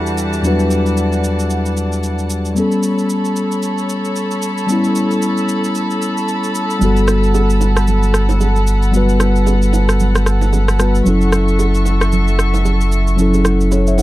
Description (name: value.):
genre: amapiano.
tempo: 113 BPM.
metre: 4/4.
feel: swing 58% on 16ths.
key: unclear.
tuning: A4 = 437 Hz.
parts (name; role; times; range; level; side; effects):
mellow tine electric piano; accompaniment; 0.0-14.0 s; E2 to F#5; -17 LUFS; left 2 dB; none.
warm studio string section; sustained chords; 0.0-14.0 s; E3 to C#6; -22 LUFS; right 1 dB; none.
electronic shaker and rim click; drums; 0.1-14.0 s; none; -23 LUFS; right 1 dB; none.
warm sub bass; bass; 6.8-14.0 s; F#1 to G1; -14 LUFS; equal; none.
congas and bongos; percussion; 6.8-14.0 s; none; -25 LUFS; right 7 dB; none.
room: little or no reverb.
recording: dark, warm production.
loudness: -13 LUFS.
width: side -16 dB against mid.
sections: 0.0-14.0 A section.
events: none.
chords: 0.0 Em11; 2.6 A9; 6.8 Gmaj9; 11.1 F#m7.